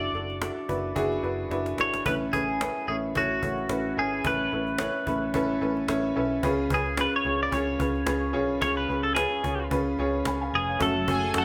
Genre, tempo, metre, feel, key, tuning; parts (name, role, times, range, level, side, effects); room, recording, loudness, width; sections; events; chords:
piano-driven pop; 110 BPM; 4/4; swing 56% on 16ths; A4 = 439 Hz
twelve-string electric guitar; melody; 0.0-11.4 s; F#4 to D5; -31 LUFS; equal
bright upright piano; accompaniment; 0.0-11.4 s; A2 to B5; -30 LUFS; equal
vintage muted fingered electric bass; bass; 0.0-11.4 s; E#1 to C#2; -37 LUFS; equal
cajon; drums; 0.1-11.4 s; -37 LUFS; equal
fingerpicked steel-string acoustic guitar; riff; 10.8-11.4 s; F#2 to F#4; -35 LUFS; equal
warm symphonic violin section; second line; 11.1-11.4 s; F#4 to G#5; -31 LUFS; equal
wet large studio reverb, RT60 0.9 s; band playing live in one room; -27 LUFS; mono
0.0-10.8 A section
drum fill 1.5-2.1
0.0 Dadd9; 2.1 Aadd9; 6.4 C#7; 10.8 F#m